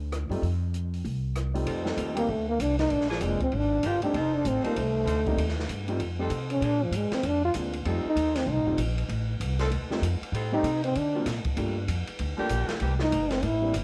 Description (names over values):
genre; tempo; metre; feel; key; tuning
jazz, big band swing; 194 BPM; 4/4; swing 62% on 8ths; F mixolydian; A4 = 439 Hz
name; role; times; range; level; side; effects
upright bass; bass; 0.0-13.8 s; F1 to D3; -32 LUFS; equal; none
open jazz drum kit; drums; 0.1-13.8 s; hi-hat, kick drum, ride cymbal, rim click, snare drum; -38 LUFS; equal; cassette tape
warm concert grand piano; accompaniment; 0.3-13.7 s; F#3 to G4; -36 LUFS; equal; cassette tape
bright saxophone section; sustained chords; 1.7-12.9 s; E3 to C5; -39 LUFS; equal; cassette tape
dark trombone; melody; 2.2-13.8 s; F3 to F4; -29 LUFS; equal; cassette tape
room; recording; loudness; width
light reverb, studio ambience; home recording on cassette; -28 LUFS; mono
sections
0.0-1.7 A section; 1.7-13.8 B section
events
trombone solo 1.7-13.8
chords
0.4 N.C.; 1.0 C5; 1.7 F7; 2.9 Bb7; 4.1 F7; 5.4 Cm; 6.0 F7; 6.6 Bb7; 7.9 F7; 10.3 Am7b5; 10.9 D7alt; 11.6 Gm7; 12.8 C7